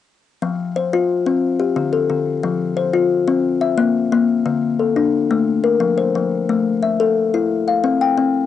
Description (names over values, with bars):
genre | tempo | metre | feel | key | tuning
southern african traditional | 119 BPM (dotted quarters) | 12/8 | straight | F major | A4 = 443 Hz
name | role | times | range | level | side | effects
kalimba | arpeggios | 0.4-8.5 s | D3 to G5 | -16 LUFS | left 5 dB | none
room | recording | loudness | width
light reverb | home recording on cassette, nothing above 10.3 kHz | -16 LUFS | side -11 dB against mid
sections
0.4-8.5 A section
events
none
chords
0.4 F5; 1.4 D5; 2.4 F5; 3.4 N.C.; 4.5 D5; 5.5 F5; 6.5 A5; 7.5 C5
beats
| 0.42 0.92 1.43 1.93 | 2.44 2.94 3.44 3.95 | 4.46 4.96 5.47 5.97 | 6.48 6.99 7.50 8.00